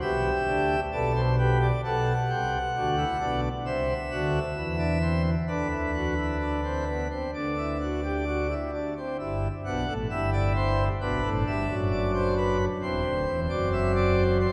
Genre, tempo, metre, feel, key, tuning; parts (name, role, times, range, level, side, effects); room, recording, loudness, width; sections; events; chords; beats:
classical, baroque-style 3-part fugue for pipe organ; 66 BPM; 4/4; straight; G major; A4 = 440 Hz
pipe organ, plenum; solo; 0.0-14.5 s; D1 to F#5; -27 LUFS; equal
wet cathedral reverb, RT60 5.1 s; recorded in a church or concert hall; -27 LUFS; mono
0.0-1.8 A section; 1.8-9.2 B section; 9.2-14.5 C section
0.0 G/B; 3.7 Cadd9; 5.5 D13; 7.3 D; 9.2 G; 12.8 C
0.01 0.93 | 1.84 2.76 3.66 4.56 | 5.47 6.40 7.34 8.27 | 9.20 10.11 11.01 11.92 | 12.82 13.72